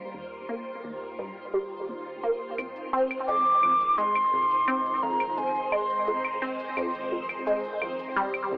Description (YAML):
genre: ambient, sequencer-driven space music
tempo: 86 BPM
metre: 4/4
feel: straight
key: F minor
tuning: A4 = 442 Hz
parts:
  - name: phased string machine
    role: sustained chords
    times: 0.0-8.6 s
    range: Eb3 to C5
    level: -37 LUFS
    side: equal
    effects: ensemble chorus, phaser, cassette tape
  - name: resonant blip pluck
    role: riff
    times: 0.0-8.6 s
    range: C2 to C4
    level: -30 LUFS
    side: equal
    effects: phaser, analog chorus, cassette tape, analog delay
  - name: warm sub bass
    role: bass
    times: 0.0-8.6 s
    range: Eb1 to C2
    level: -64 LUFS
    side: equal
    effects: none
  - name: twinkling granular texture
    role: texture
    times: 0.0-8.6 s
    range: C5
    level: -37 LUFS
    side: right 1 dB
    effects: built-in reverb, cassette tape, plate reverb
  - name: shaker and claves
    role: percussion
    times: 2.6-8.5 s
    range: none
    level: -34 LUFS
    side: equal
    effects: cassette tape, analog delay
  - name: mellow hollow silver concert flute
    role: melody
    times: 3.3-6.4 s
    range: Ab5 to D6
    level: -24 LUFS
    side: equal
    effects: cassette tape, analog delay
room: wet studio reverb, RT60 0.6 s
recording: home recording on cassette, telephone sound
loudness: -24 LUFS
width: side -26 dB against mid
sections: 0.0-8.6 A section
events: fade-in on string machine 0.0-8.6; fade-in on synth texture 0.0-8.6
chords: 0.0 Ebadd9; 2.6 Fm7